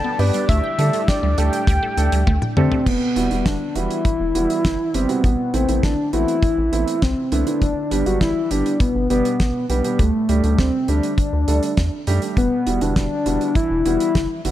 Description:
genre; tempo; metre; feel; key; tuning
synth-pop; 101 BPM; 4/4; straight; E minor; A4 = 439 Hz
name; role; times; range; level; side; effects
soft octave-layered synth lead; melody; 0.0-14.4 s; A3 to A5; -20 LUFS; left 1 dB; chorus, analog delay
phased analog pad; sustained chords; 0.0-2.8 s; A2 to G4; -31 LUFS; left 2 dB; phaser, chorus
resonant blip pluck; arpeggios; 0.0-2.8 s; G3 to G5; -29 LUFS; right 2 dB; phaser, analog delay
warm grand piano; accompaniment; 0.2-14.5 s; G3 to B4; -26 LUFS; right 6 dB; none
rubbery square bass; bass; 0.2-14.5 s; E1 to D3; -21 LUFS; equal; none
damped 70s drum kit; drums; 0.2-14.5 s; crash cymbal, hi-hat, kick drum, snare drum, toms; -22 LUFS; equal; none
room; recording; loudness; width
light reverb, studio reverb; none; -17 LUFS; side -13 dB against mid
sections
0.0-2.9 A section; 2.9-14.5 B section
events
drum fill 2.3-2.9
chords
0.5 Dsus4; 2.9 Emadd9; 5.2 Amadd9; 7.6 G; 10.0 Dsus4; 12.4 Emadd9

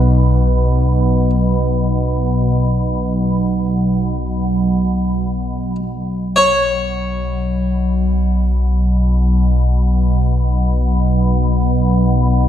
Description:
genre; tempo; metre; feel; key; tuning
world meditative, free-time meditation music; free time; none; none; unclear; A4 = 440 Hz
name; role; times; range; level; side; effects
organ-like drone; drone; 0.0-12.5 s; B1; -14 LUFS; equal; ensemble chorus, built-in reverb
harpsichord; texture; 0.0-12.5 s; B4 to C#5; -16 LUFS; left 1 dB; none
room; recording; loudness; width
wet concert hall reverb, RT60 2.0 s; cassette tape; -14 LUFS; side -10 dB against mid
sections
0.0-5.6 A section; 5.6-12.5 A section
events
none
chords
none

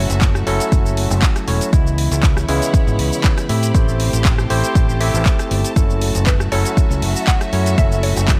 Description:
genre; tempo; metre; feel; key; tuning
deep house; 119 BPM; 4/4; swing 53% on 16ths; F# minor; A4 = 440 Hz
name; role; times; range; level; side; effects
mallet-like synth pluck; melody; 0.0-0.9, 6.3-8.4 s; B4 to F#5; -30 LUFS; equal; chorus, digital delay
barky tine electric piano; stabs; 0.0-8.4 s; C#3 to E5; -24 LUFS; equal; overdrive, sidechain pumping, digital delay
fingered electric bass; bass; 0.0-8.4 s; E1 to A2; -21 LUFS; equal; tube saturation, sidechain pumping
clear symphonic string section; texture; 0.0-8.4 s; E4 to B5; -31 LUFS; equal; sidechain pumping
house drum kit; drums; 0.1-8.4 s; handclaps, hi-hat, rim click, shaker; -26 LUFS; equal; overdrive
electronic kick drum; drums; 0.2-8.4 s; none; -17 LUFS; equal; overdrive
room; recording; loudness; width
digital ambience; none; -16 LUFS; mono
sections
0.0-8.4 A section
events
none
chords
0.0 F#m7; 1.7 C#m7; 3.5 Am7; 5.8 F#m7

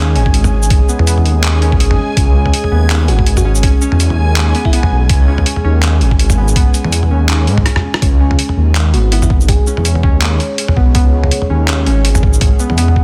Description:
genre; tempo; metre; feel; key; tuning
half-time drum and bass; 164 BPM; 4/4; swing 57% on 16ths, half-time; unclear; A4 = 440 Hz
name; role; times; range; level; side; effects
dark analog pad; sustained chords; 0.0-13.0 s; G#3 to F#5; -25 LUFS; equal; chorus, sidechain pumping
warbly dusty pluck; arpeggios; 0.0-13.0 s; B3 to G#4; -25 LUFS; equal; lush chorus, digital delay
dark detuned saw bass; bass; 0.0-13.0 s; G#1 to G#2; -15 LUFS; equal; none
backwards swelling texture; texture; 0.0-8.0 s; G#5; -28 LUFS; equal; built-in reverb
boom bap sampler-style drum kit; drums; 0.2-12.9 s; handclaps, hi-hat, rim click, shaker, toms; -20 LUFS; equal; studio reverb, soft clipping on snare
electronic kick drum; drums; 0.3-13.0 s; none; -14 LUFS; equal; studio reverb
bell-like FM electric piano; melody; 3.1-4.8, 8.9-9.9 s; E4 to G#4; -28 LUFS; equal; chorus, cassette tape, digital delay
room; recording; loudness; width
little or no reverb; dense, heavily limited modern master; -12 LUFS; mono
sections
0.0-8.0 A section; 8.0-13.0 A section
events
drop 0.0-8.0, 8.0-13.0; break 7.7-8.0; drum fill 7.7-8.0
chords
0.0 C#5

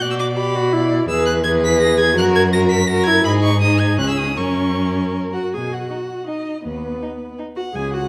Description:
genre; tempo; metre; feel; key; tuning
quick classical-period movement for string quartet; 165 BPM; 3/4; rubato; B major; A4 = 440 Hz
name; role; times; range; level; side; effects
rich violin; melody; 0.0-8.1 s; B4 to B6; -25 LUFS; equal; none
rich violin; second line; 0.0-7.5 s; D#4 to D5; -25 LUFS; equal; none
warm viola; accompaniment; 0.0-8.1 s; B3 to G#4; -23 LUFS; equal; none
rich cello; bass; 0.0-8.0 s; C#2 to B2; -24 LUFS; equal; none
room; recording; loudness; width
wet recital hall reverb, RT60 1.4 s; dark, warm production; -18 LUFS; mono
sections
0.0-5.5 A section; 5.5-8.1 B section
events
none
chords
0.0 Bm; 1.1 E; 2.2 F#; 3.3 G#5; 4.0 C#5; 4.4 F#; 5.5 B; 6.6 B/D#

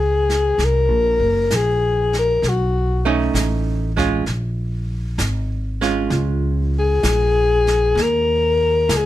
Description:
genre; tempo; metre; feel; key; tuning
jazz ballad; 65 BPM; 4/4; swing 68% on 8ths; unclear; A4 = 441 Hz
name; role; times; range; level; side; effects
breathy alto saxophone; melody; 0.0-9.1 s; Gb4 to Bb4; -17 LUFS; left 3 dB; none
upright bass; bass; 0.0-9.1 s; Gb1 to Eb2; -20 LUFS; equal; none
jazz brush drum kit; drums; 0.3-9.1 s; brushed snare drum, hi-hat, kick drum, snare drum; -27 LUFS; right 2 dB; none
archtop guitar, miked and amplified; accompaniment; 3.1-7.0 s; Ab3 to F4; -21 LUFS; right 6 dB; none
room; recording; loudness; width
little or no reverb; none; -16 LUFS; side -14 dB against mid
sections
0.0-9.1 A section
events
alto saxophone solo 0.0-9.1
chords
0.0 N.C.; 0.6 Gbadd9; 2.4 Cb9; 4.3 Bbm7; 8.0 Eb5

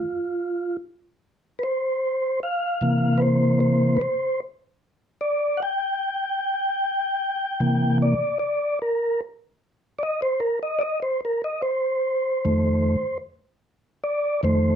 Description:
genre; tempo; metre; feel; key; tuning
blues; 50 BPM (dotted quarters); 12/8; straight; unclear; A4 = 440 Hz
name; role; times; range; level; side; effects
mellow tonewheel organ; solo; 0.0-14.8 s; F2 to G5; -21 LUFS; equal; slow rotary speaker
room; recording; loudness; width
moderate club reverb, RT60 0.6 s; none; -21 LUFS; side -8 dB against mid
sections
0.0-14.8 A section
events
tonewheel organ solo 0.0-14.8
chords
0.0 F5; 2.8 C7; 12.4 F7

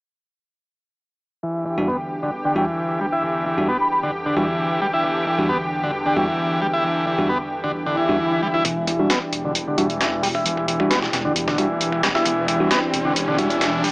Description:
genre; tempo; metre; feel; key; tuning
breakbeat, breaks; 133 BPM; 4/4; straight; E minor; A4 = 445 Hz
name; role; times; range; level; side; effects
lush unison pad; sustained chords; 1.4-13.9 s; E2 to G4; -26 LUFS; equal; chorus, sidechain pumping
combo organ; riff; 1.4-13.9 s; D3 to E4; -22 LUFS; equal; tube saturation, low-pass filter, digital delay
bell-like tine electric piano; stabs; 1.8-13.5 s; E2 to F#4; -25 LUFS; equal; low-pass filter, digital delay
mellow baroque flute; melody; 2.5-6.2 s; G5 to B5; -23 LUFS; equal; telephone sound
swell and riser; sound effects; 7.9-13.9 s; none; -28 LUFS; equal; none
detuned saw bass; bass; 8.6-13.9 s; E1; -31 LUFS; equal; none
dusty soul sampler-style drum kit; drums; 8.6-13.9 s; hi-hat, kick drum, snare drum; -22 LUFS; equal; high-pass filter on kick, high-pass filter on hats, high-pass filter on snare
room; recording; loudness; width
moderate lush hall reverb, RT60 2.4 s; small speaker sound; -18 LUFS; side -28 dB against mid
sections
1.4-8.7 A section; 8.7-13.9 B section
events
filter sweep on transistor combo organ 1.4-8.7, 8.7-13.9; swell 7.9-8.7; build-up 8.7-13.9; riser 8.7-13.9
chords
1.4 Em7

